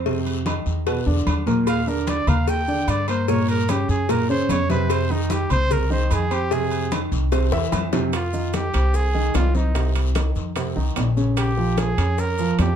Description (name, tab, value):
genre	Afro-Cuban jazz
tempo	149 BPM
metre	4/4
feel	straight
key	F minor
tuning	A4 = 440 Hz
part	dark baby grand piano	accompaniment	0.0-12.7 s	Bb2 to C6	-24 LUFS	right 1 dB	none
part	upright bass	bass	0.0-12.8 s	Bb1 to G2	-23 LUFS	equal	none
part	congas	percussion	0.1-12.8 s	none	-30 LUFS	left 4 dB	none
part	cowbell and bongos	percussion	0.1-12.8 s	none	-30 LUFS	left 5 dB	none
part	guiro	percussion	0.1-12.8 s	none	-39 LUFS	left 7 dB	none
part	agogo bells and timbales	percussion	0.3-12.8 s	none	-31 LUFS	right 6 dB	none
part	warm trumpet	melody	1.7-12.8 s	Eb4 to G5	-25 LUFS	right 2 dB	none
part	maracas	percussion	1.7-12.8 s	none	-42 LUFS	right 4 dB	none
room	light reverb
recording	dark, warm production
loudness	-19 LUFS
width	side -8 dB against mid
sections	0.0-8.1 A section; 8.1-12.8 B section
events	trumpet solo 0.0-8.1; drum fill 7.3-8.1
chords	0.1 F5; 0.9 E5; 1.7 Ebmaj7; 3.3 Gdim; 4.1 Gb; 4.9 Fm7; 7.3 C; 8.1 Cmadd11; 10.6 F5; 11.4 Bbm7